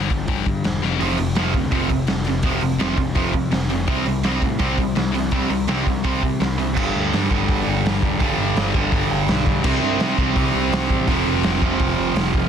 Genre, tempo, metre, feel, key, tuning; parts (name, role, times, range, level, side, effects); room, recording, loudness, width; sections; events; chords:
punk rock; 167 BPM; 4/4; straight; A4 = 441 Hz
sludgy distorted guitar; riff; 0.0-12.5 s; F2 to C4; -23 LUFS; left 11 dB; overdrive
growling picked electric bass; bass; 0.0-12.4 s; E1 to C3; -26 LUFS; equal; overdrive
raw garage drum kit; drums; 0.1-12.4 s; crash cymbal, hi-hat, kick drum, snare drum; -23 LUFS; equal
crunchy overdriven guitar; riff; 1.0-12.5 s; F2 to C4; -23 LUFS; right 12 dB
little or no reverb; dense, heavily limited modern master; -18 LUFS; side -8 dB against mid
0.0-6.8 A section; 6.8-12.5 B section
drum fill 0.8
0.0 G5; 0.8 F5; 3.9 C5; 6.8 G5; 9.6 C5; 11.1 F5